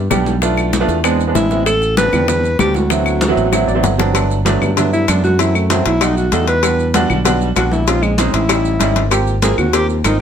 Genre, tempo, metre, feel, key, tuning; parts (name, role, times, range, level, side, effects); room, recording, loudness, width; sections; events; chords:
Afro-Cuban jazz; 193 BPM; 4/4; straight; G major; A4 = 437 Hz
modern bright fingered electric bass; bass; 0.0-10.2 s; G1 to G2; -18 LUFS; equal
clear concert grand piano; accompaniment; 0.1-10.2 s; F#3 to F#5; -18 LUFS; right 3 dB
bongos and cowbell; percussion; 0.1-10.2 s; -21 LUFS; left 9 dB
claves; percussion; 0.1-10.2 s; -25 LUFS; left 4 dB
congas; percussion; 0.1-10.2 s; -23 LUFS; equal
maracas; percussion; 0.1-10.2 s; -28 LUFS; right 7 dB
mellow alto saxophone; melody; 1.4-10.2 s; Ab3 to B4; -18 LUFS; equal
light reverb; -12 LUFS; side -8 dB against mid
0.0-4.2 A section; 4.2-10.2 B section
drum fill 3.2-4.2; grand piano fill 3.5-4.2; alto saxophone solo 4.2-10.2
0.4 Bm7b5; 1.0 E7b13; 1.7 Am11; 2.9 D13; 4.2 Gmaj9; 5.4 F#m7b5; 6.0 B7b13; 6.6 Em7; 7.9 Bbm11; 8.5 A7#11; 9.1 Abmaj13